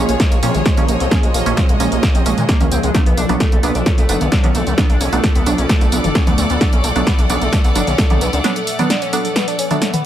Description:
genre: driving peak-time techno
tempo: 131 BPM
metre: 4/4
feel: straight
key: unclear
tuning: A4 = 441 Hz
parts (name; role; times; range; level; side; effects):
- overdriven synth lead; riff; 0.0-10.0 s; Ab3 to D4; -23 LUFS; equal; distortion, phaser, analog chorus, sidechain pumping, dub echo
- wavetable chord stab; stabs; 0.0-9.9 s; F3 to D4; -22 LUFS; right 3 dB; sidechain pumping, digital delay
- gritty driven synth bass; bass; 0.0-8.4 s; F#1 to Bb2; -20 LUFS; equal; sidechain pumping
- deep dark ambient pad; drone; 0.0-10.1 s; Bb2 to F3; -26 LUFS; left 1 dB; chorus, built-in reverb, sidechain pumping
- bright chamber string section; texture; 0.0-10.1 s; Ab4 to F#5; -25 LUFS; equal; sidechain pumping
- techno drum kit; drums; 0.1-10.0 s; hi-hat, snare drum, tambourine, toms; -21 LUFS; equal; overdrive
- electronic kick drum; drums; 0.2-8.1 s; none; -15 LUFS; equal; overdrive
room: light reverb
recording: none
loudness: -13 LUFS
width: side -11 dB against mid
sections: 0.0-10.1 A section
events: break 8.4-10.1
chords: 0.0 Bbm; 2.9 Bm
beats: 0.20 0.66 | 1.11 1.57 2.03 2.49 | 2.95 3.40 3.86 4.32 | 4.78 5.24 5.70 6.15 | 6.61 7.07 7.53 7.99 | 8.44 8.90 9.36 9.82

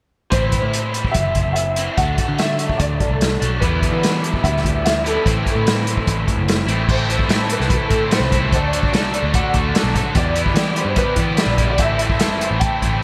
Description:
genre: indie rock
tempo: 146 BPM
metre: 4/4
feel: straight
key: A dorian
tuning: A4 = 439 Hz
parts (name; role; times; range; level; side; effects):
- dark upright piano; melody; 0.3-13.0 s; A4 to G5; -26 LUFS; equal; ensemble chorus, delay
- raw garage guitar; riff; 0.3-13.0 s; E3 to A4; -26 LUFS; equal; overdrive, analog chorus
- picked electric bass; bass; 0.3-13.0 s; F#1 to E3; -25 LUFS; equal; none
- vintage drum kit; drums; 0.3-12.9 s; crash cymbal, hi-hat, kick drum, snare drum; -22 LUFS; equal; gated reverb
- crunchy overdriven guitar; riff; 3.6-13.0 s; E2 to F#4; -27 LUFS; equal; subtle chorus
room: light reverb, studio reverb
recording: bright 1980s-style digital production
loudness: -18 LUFS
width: mono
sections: 0.3-6.9 A section; 6.9-13.0 B section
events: none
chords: 0.3 Am; 2.0 D; 3.6 Em; 5.3 Am; 8.5 D; 10.2 Em; 11.8 Am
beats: | 0.32 0.73 1.15 1.56 | 1.97 2.38 2.79 3.21 | 3.62 4.03 4.44 4.85 | 5.26 5.67 6.07 6.48 | 6.89 7.30 7.71 8.12 | 8.52 8.93 9.34 9.75 | 10.16 10.56 10.97 11.38 | 11.79 12.21 12.62 13.03

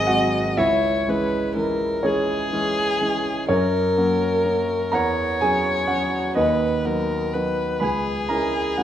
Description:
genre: classical, romantic duo for violin and grand piano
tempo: 42 BPM (dotted quarters)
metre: 6/8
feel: rubato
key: unclear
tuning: A4 = 440 Hz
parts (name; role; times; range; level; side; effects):
- dark violin; melody; 0.0-8.8 s; G#4 to D#5; -23 LUFS; left 1 dB; none
- warm grand piano; accompaniment; 0.0-8.8 s; G#1 to B5; -21 LUFS; right 1 dB; none
room: moderate recital hall reverb, RT60 1.5 s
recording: minimal, uncompressed stereo recording, vinyl crackle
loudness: -19 LUFS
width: side -10 dB against mid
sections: 0.0-8.8 A section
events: none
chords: 0.0 G#7; 0.6 C#m; 3.5 F#; 4.9 F#7/E; 6.4 B/D#; 7.8 C#m7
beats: | 0.57 2.02 | 3.49 4.93 | 6.36 7.81

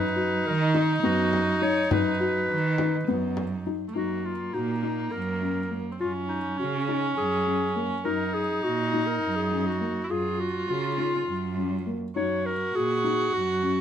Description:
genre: contemporary instrumental, chamber music in an uneven meter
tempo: 205 BPM (eighths)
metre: 7/8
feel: straight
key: unclear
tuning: A4 = 443 Hz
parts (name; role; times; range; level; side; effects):
- clear clarinet; melody; 0.0-13.8 s; C#4 to C#5; -30 LUFS; left 1 dB; none
- rich viola; second line; 0.0-13.8 s; A3 to F#4; -29 LUFS; right 1 dB; none
- felt-muted upright piano; arpeggios; 0.0-13.8 s; A#3 to F#4; -30 LUFS; left 6 dB; none
- rich cello; bass; 0.0-13.8 s; F#2 to D#3; -30 LUFS; right 4 dB; none
- frame drum; percussion; 0.7-3.8 s; none; -31 LUFS; left 3 dB; none
room: light reverb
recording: close, detailed microphones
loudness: -24 LUFS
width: side -9 dB against mid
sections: 0.0-4.0 A section; 4.0-13.8 B section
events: none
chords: 0.0 B/F#; 4.0 D#m/F#; 6.0 F#maj7(no3); 8.1 D#m/F#; 10.1 F#maj7(no3); 12.2 D#m/F#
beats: 0.16 0.45 0.74 1.04 1.33 1.62 | 1.91 2.20 2.49 2.78 3.08 3.37 3.66 | 3.95 4.24 4.54 4.83 5.12 5.41 5.71 | 6.00 6.29 6.58 6.88 7.17 7.46 7.76 | 8.05 8.35 8.64 8.93 9.22 9.52 9.81 | 10.11 10.40 10.69 10.99 11.28 11.57 11.87 | 12.16 12.45 12.75 13.04 13.33 13.63

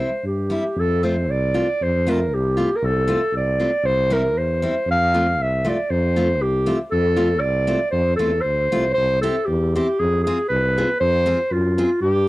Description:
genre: alpine folk, alpine dance band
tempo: 118 BPM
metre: 2/4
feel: rubato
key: F major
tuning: A4 = 440 Hz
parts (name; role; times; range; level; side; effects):
- warm clarinet; melody; 0.0-12.3 s; F4 to F5; -20 LUFS; equal; none
- picked steel-string acoustic guitar; accompaniment; 0.0-11.9 s; G3 to Ab4; -25 LUFS; left 1 dB; none
- mellow tuba; bass; 0.0-12.3 s; C2 to G2; -22 LUFS; equal; none
room: light reverb, studio ambience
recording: dry, gritty hardware recording, transformer saturation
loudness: -18 LUFS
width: side -18 dB against mid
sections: 0.8-9.0 A section; 9.0-12.3 B section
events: none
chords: 0.0 C; 0.8 F/C; 3.8 C; 4.9 F; 9.0 C; 10.0 Fm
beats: 0.24 | 0.77 1.29 | 1.81 2.32 | 2.82 3.33 | 3.83 4.35 | 4.88 5.39 | 5.90 6.41 | 6.91 7.41 | 7.92 8.44 | 8.96 9.48 | 10.00 10.51 | 11.01 11.51 | 12.02

